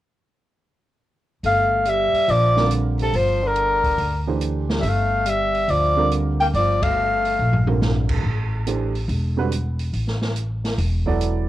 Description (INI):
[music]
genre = modal jazz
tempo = 141 BPM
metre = 4/4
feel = swing 67% on 8ths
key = G dorian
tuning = A4 = 440 Hz
[part]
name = breathy tenor saxophone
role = second line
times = 1.4-7.7 s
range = C3 to Bb3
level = -27 LUFS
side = left 8 dB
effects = cassette tape
[part]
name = upright bass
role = bass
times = 1.4-11.5 s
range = E1 to D2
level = -22 LUFS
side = equal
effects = none
[part]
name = open jazz drum kit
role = drums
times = 1.4-11.3 s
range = crash cymbal, hi-hat, kick drum, ride cymbal, snare drum, toms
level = -28 LUFS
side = equal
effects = cassette tape
[part]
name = breathy soprano saxophone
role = melody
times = 1.5-7.7 s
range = A4 to G5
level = -19 LUFS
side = equal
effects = cassette tape
[part]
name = dark baby grand piano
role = accompaniment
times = 2.6-11.5 s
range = D3 to D5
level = -25 LUFS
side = right 6 dB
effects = cassette tape
[sound]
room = light reverb, small room ambience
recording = home recording on cassette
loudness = -18 LUFS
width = side -14 dB against mid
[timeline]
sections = 1.4-11.5 A section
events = band accent 6.7; drum fill 7.4-7.8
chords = 1.4 Gm9; 8.2 Asus2